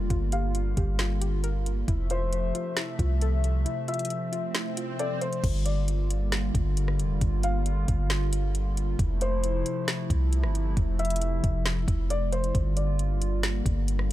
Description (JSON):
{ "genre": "hip hop, atmospheric cloud-rap", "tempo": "135 BPM", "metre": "4/4", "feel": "half-time", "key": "G dorian", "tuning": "A4 = 440 Hz", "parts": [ { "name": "hollow soft pad", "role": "sustained chords", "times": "0.0-14.1 s", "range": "C3 to E5", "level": "-32 LUFS", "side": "equal", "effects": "chorus, sidechain pumping" }, { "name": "soft round pluck", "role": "arpeggios", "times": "0.0-5.4 s", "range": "E4 to Bb4", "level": "-39 LUFS", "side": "left 4 dB", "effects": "chorus, ping-pong delay" }, { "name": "long sustained 808-style bass", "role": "bass", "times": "0.0-14.1 s", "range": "F1 to C2", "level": "-26 LUFS", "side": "equal", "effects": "none" }, { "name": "smooth R&B drum kit", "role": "drums", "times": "0.1-14.1 s", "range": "crash cymbal, hi-hat, kick drum, rim click, snare drum", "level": "-29 LUFS", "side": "equal", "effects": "none" }, { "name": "felt-muted upright piano", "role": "melody", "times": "0.3-13.4 s", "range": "C5 to F5", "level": "-34 LUFS", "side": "left 3 dB", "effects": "ping-pong delay" }, { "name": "swell", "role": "sound effects", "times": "3.9-5.4 s", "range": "none", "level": "-40 LUFS", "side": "equal", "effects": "none" } ], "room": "digital ambience", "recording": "none", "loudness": "-25 LUFS", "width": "side -14 dB against mid", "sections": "0.0-5.4 A section; 5.4-14.1 B section", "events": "break 3.7-5.4; swell 3.9-5.4", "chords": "0.0 Gm7; 1.9 Fmaj7; 5.4 Gm7; 9.0 Fmaj7; 12.5 Gm7" }